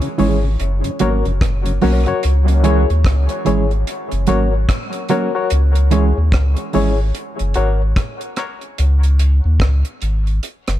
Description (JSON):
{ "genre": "dub reggae", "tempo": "73 BPM", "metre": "4/4", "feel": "swing 61% on 16ths", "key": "C# dorian", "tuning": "A4 = 440 Hz", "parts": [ { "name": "mellow tonewheel organ", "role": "accompaniment", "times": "0.0-2.1, 9.0-10.7 s", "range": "F#2 to C#4", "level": "-27 LUFS", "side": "left 3 dB", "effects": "slow rotary speaker, high-pass filter, dub echo" }, { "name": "barky reed electric piano", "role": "stabs", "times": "0.0-10.3 s", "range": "E4 to C#5", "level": "-22 LUFS", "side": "left 5 dB", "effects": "overdrive, fast tremolo, high-pass filter, dub echo" }, { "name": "deep reggae drum kit", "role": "drums", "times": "0.0-10.8 s", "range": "hi-hat, kick drum, rim click", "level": "-21 LUFS", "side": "equal", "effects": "none" }, { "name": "mellow electric guitar", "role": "accompaniment", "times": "0.2-10.2 s", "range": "E3 to C#4", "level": "-22 LUFS", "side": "right 7 dB", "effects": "spring reverb, high-pass filter, dub echo" }, { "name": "warm sub bass", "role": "bass", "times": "0.2-10.8 s", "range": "F#1 to D#2", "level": "-15 LUFS", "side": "equal", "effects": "none" } ], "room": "studio reverb", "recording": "echo-heavy mix", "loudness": "-14 LUFS", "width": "side -13 dB against mid", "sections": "0.0-10.8 A section", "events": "filter sweep 5.5-10.8", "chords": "0.0 C#m; 0.6 F#; 2.2 C#m; 3.9 F#; 5.5 C#m; 7.1 F#; 8.8 C#m", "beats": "0.59 1.41 | 2.23 3.05 3.87 4.69 | 5.51 6.33 7.15 7.97 | 8.79 9.60 10.42" }